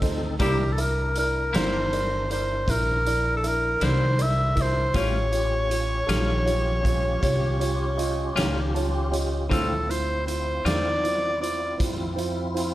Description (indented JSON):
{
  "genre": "slow blues",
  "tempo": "53 BPM (dotted quarters)",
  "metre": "12/8",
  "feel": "straight",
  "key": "C mixolydian",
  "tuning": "A4 = 440 Hz",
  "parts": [
    { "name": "dark concert grand piano", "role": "accompaniment", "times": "0.0-12.7 s", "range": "D#4 to A5", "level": "-32 LUFS", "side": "right 3 dB", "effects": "none" },
    { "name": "tonewheel organ", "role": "sustained chords", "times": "0.0-12.7 s", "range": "C4 to Bb4", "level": "-34 LUFS", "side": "left 1 dB", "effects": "slow rotary speaker, overdrive, chorus vibrato" },
    { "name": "upright bass", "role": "bass", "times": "0.0-12.7 s", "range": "G1 to F2", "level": "-27 LUFS", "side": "equal", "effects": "none" },
    { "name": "raw garage drum kit", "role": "drums", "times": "0.0-12.7 s", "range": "hi-hat, kick drum, snare drum", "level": "-30 LUFS", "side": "equal", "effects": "none" },
    { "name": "breathy tenor saxophone", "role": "melody", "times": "0.4-11.8 s", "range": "G4 to E5", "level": "-26 LUFS", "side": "equal", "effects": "none" },
    { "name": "clean electric guitar", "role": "accompaniment", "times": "0.4-10.9 s", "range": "A2 to E#4", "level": "-30 LUFS", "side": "left 4 dB", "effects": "harmonic tremolo" }
  ],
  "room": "moderate spring reverb, RT60 2.0 s",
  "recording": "none",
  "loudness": "-22 LUFS",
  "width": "side -15 dB against mid",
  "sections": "0.0-12.7 A section",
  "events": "grand piano fill 8.4-9.5",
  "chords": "0.4 C7; 4.9 A7alt; 9.5 Dm7"
}